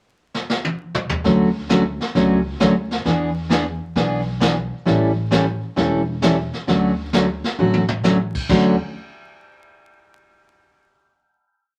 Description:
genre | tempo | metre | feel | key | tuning
country, western swing | 132 BPM | 4/4 | swing 68% on 8ths | D major | A4 = 439 Hz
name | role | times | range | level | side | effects
vintage brush drum kit | drums | 0.3-8.6 s | brushed snare drum, china cymbal, crash cymbal, hi-hat, kick drum, snare drum, toms | -26 LUFS | equal | none
picked steel-string acoustic guitar | accompaniment | 1.2-8.8 s | D3 to A4 | -20 LUFS | equal | none
upright bass | bass | 1.2-8.8 s | E1 to E2 | -28 LUFS | equal | none
room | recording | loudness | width
wet club reverb, RT60 0.5 s | vinyl crackle | -19 LUFS | mono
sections
0.0-1.2 pickup bar; 1.2-8.5 A section; 8.5-10.3 final chord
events
drum fill 0.3-1.2, 7.6-8.0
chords
0.0 N.C.; 1.2 Dmaj7; 3.1 E7; 4.9 A7; 6.7 Dmaj7

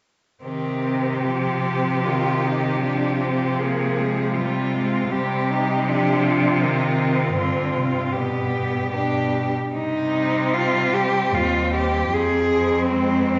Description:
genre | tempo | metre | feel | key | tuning
classical, lyrical piece for cello ensemble | 70-81 BPM | 3/4 | rubato | C minor | A4 = 441 Hz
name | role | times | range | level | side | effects
rich cello | melody | 0.4-13.4 s | C4 to Ab4 | -26 LUFS | equal | none
warm cello | second line | 0.4-13.4 s | Ab3 to F4 | -28 LUFS | equal | none
rich cello | accompaniment | 0.4-13.4 s | B2 to Ab3 | -29 LUFS | equal | none
clear cello | bass | 0.4-13.4 s | Eb2 to C3 | -27 LUFS | equal | none
room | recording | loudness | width
wet recital hall reverb, RT60 1.4 s | recorded in a church or concert hall, nothing above 7.8 kHz | -21 LUFS | mono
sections
0.4-9.8 A section; 9.8-13.4 B section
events
none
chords
0.4 Cm; 2.8 Dm7b5/C (rootless); 5.1 Cm; 7.4 G7; 9.8 Cm; 12.1 Fm

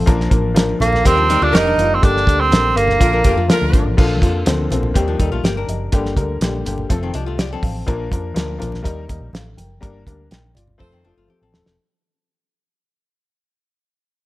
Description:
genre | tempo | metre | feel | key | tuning
uptempo 1960s-style soul | 123 BPM | 4/4 | straight | Bb major | A4 = 440 Hz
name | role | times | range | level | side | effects
dark upright piano | accompaniment | 0.0-11.7 s | D3 to G5 | -22 LUFS | left 3 dB | none
archtop guitar, miked and amplified | riff | 0.0-7.9, 10.9-11.8 s | Eb3 to Bb4 | -26 LUFS | left 6 dB | none
vintage muted fingered electric bass | bass | 0.0-11.8 s | Eb1 to F2 | -22 LUFS | equal | none
cloth-damped thuddy drum kit | drums | 0.1-11.8 s | crash cymbal, hi-hat, kick drum, snare drum | -18 LUFS | equal | none
congas | percussion | 0.3-11.6 s | none | -32 LUFS | right 2 dB | none
clear tenor saxophone | melody | 0.8-3.5 s | Bb3 to Eb4 | -16 LUFS | right 3 dB | none
edgy saxophone section | second line | 1.1-3.8, 10.8-11.1 s | D4 to C5 | -25 LUFS | right 1 dB | tape echo
room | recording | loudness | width
small room reverb | none | -14 LUFS | side -17 dB against mid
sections
0.0-4.0 A section; 4.0-11.8 B section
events
fade-out 4.0-11.8; band accent 9.8-11.8; drum fill 10.8-11.8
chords
0.1 Bb; 1.1 Eb; 2.0 Gm; 3.0 Bb; 4.9 Eb; 5.9 Gm; 6.9 F; 7.9 Bb; 8.8 Eb; 9.8 Gm; 10.8 F

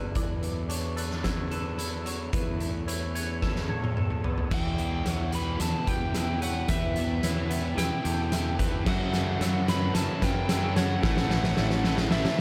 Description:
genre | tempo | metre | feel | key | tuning
post-rock | 110 BPM | 4/4 | straight | E dorian | A4 = 441 Hz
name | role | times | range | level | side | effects
electric guitar through a small old amp | arpeggios | 0.0-12.4 s | A4 to E5 | -44 LUFS | equal | analog chorus, tape echo
twangy electric guitar | arpeggios | 0.0-12.4 s | E3 to C#5 | -41 LUFS | equal | analog chorus, tape echo
fuzz fingered electric bass | bass | 0.0-12.2 s | A1 to F#2 | -33 LUFS | equal | overdrive
oversized low-tuned drum kit | drums | 0.2-12.4 s | crash cymbal, hi-hat, kick drum, snare drum, toms | -32 LUFS | equal | none
overdriven slide guitar | melody | 4.5-12.4 s | E5 to B5 | -36 LUFS | equal | subtle chorus, tape echo
warm studio string section | sustained chords | 4.5-12.4 s | F#3 to A4 | -44 LUFS | equal | none
crunchy overdriven guitar | riff | 4.5-12.4 s | E2 to A3 | -36 LUFS | equal | analog chorus
crunchy overdriven guitar | riff | 8.9-12.4 s | F#2 to A3 | -38 LUFS | equal | lush chorus
room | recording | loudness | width
moderate huge ambient reverb, RT60 7.9 s | dreamy mix soaked in reverb | -28 LUFS | mono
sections
0.0-4.5 A section; 4.5-12.4 B section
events
drum fill 3.4-4.5, 4.5-12.4; build-up 4.5-12.4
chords
0.2 D/E; 2.3 Aadd9/E; 4.5 Em; 8.9 F#m7; 11.0 A6

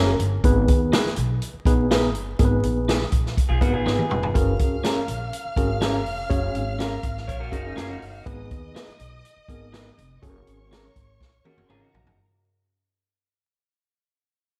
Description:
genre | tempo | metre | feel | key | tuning
uptempo 1960s-style soul | 123 BPM | 4/4 | straight | F# major | A4 = 438 Hz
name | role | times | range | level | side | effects
mellow tine electric piano | accompaniment | 0.0-11.9 s | B3 to G#5 | -28 LUFS | equal | none
electric guitar through a small old amp | stabs | 0.0-11.8 s | C#4 to B4 | -31 LUFS | equal | spring reverb
upright bass | bass | 0.0-12.2 s | E#1 to D#2 | -29 LUFS | equal | none
swinging big-band drum kit | drums | 0.2-12.2 s | hi-hat, kick drum, snare drum, toms | -26 LUFS | equal | none
electric guitar through a small old amp | riff | 3.5-4.3, 7.3-8.2, 11.5-12.2 s | C#4 to C#5 | -36 LUFS | equal | spring reverb
warm studio violin section | second line | 4.4-12.2 s | A#4 to E#6 | -38 LUFS | equal | none
room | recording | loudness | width
light reverb | vinyl crackle | -23 LUFS | mono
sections
0.0-12.2 A section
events
fade-out 0.0-12.2; drum fill 3.9-4.3, 11.2-12.2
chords
0.4 G#m; 4.3 F#add9; 8.3 G#m; 10.2 F#add9

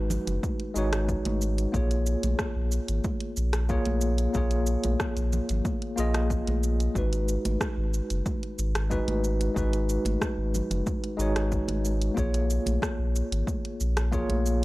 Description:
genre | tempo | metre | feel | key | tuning
sunset chillout | 92 BPM | 4/4 | straight | G# dorian | A4 = 443 Hz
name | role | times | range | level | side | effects
tine electric piano | accompaniment | 0.0-14.6 s | G#3 to D#5 | -30 LUFS | left 1 dB | medium tremolo, auto-pan, analog delay
warm sub bass | bass | 0.0-14.6 s | F#1 to A#1 | -27 LUFS | equal | none
smooth R&B drum kit | drums | 0.1-14.6 s | cabasa, hi-hat, rim click | -35 LUFS | equal | small room ambience
congas | percussion | 0.1-14.4 s | none | -37 LUFS | right 2 dB | none
electronic kick drum | drums | 0.4-14.3 s | none | -32 LUFS | equal | overdrive, small room ambience
room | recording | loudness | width
digital ambience | dry, gritty hardware recording, transformer saturation | -25 LUFS | side -19 dB against mid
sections
0.0-14.6 A section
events
none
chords
0.0 G#m7; 1.7 A#m7; 7.0 G#m7; 12.2 A#m7

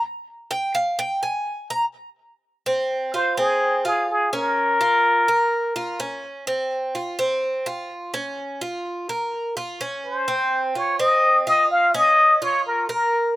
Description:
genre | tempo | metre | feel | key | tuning
latin | 126 BPM | 4/4 | straight | F minor | A4 = 440 Hz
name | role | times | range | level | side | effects
Cuban tres | arpeggios | 0.5-13.4 s | C4 to Bb5 | -24 LUFS | right 1 dB | slapback echo
trumpet with plunger mute | melody | 3.1-6.2, 10.1-13.3 s | Ab4 to F5 | -18 LUFS | left 1 dB | none
room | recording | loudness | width
little or no reverb | recorded outdoors, with no room sound | -19 LUFS | side -16 dB against mid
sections
0.0-2.7 A section; 2.7-13.4 B section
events
Cuban tres solo 0.0-2.7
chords
0.0 N.C.; 2.7 Fm; 4.6 Bbm; 6.5 F5; 8.4 Bbm; 10.3 F5; 12.2 Bbm

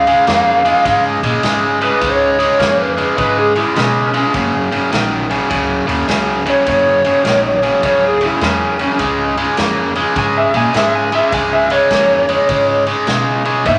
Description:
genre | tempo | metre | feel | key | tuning
electric blues shuffle | 103 BPM | 4/4 | swing 65% on 8ths | Db mixolydian | A4 = 440 Hz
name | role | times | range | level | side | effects
lead guitar through a small cranked amp | melody | 0.0-13.8 s | Db4 to Ab5 | -16 LUFS | equal | overdrive
overdriven electric guitar | riff | 0.0-13.8 s | Gb2 to Bb3 | -18 LUFS | equal | none
upright bass | bass | 0.0-13.8 s | Gb1 to Cb3 | -27 LUFS | equal | none
raw garage drum kit | drums | 0.1-13.8 s | kick drum, ride cymbal, snare drum | -25 LUFS | equal | none
room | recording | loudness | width
moderate large studio reverb, RT60 1.3 s | none | -14 LUFS | mono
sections
0.0-13.8 A section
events
lead electric guitar solo 0.0-13.8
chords
0.0 Db; 4.3 Gb; 9.0 Db7

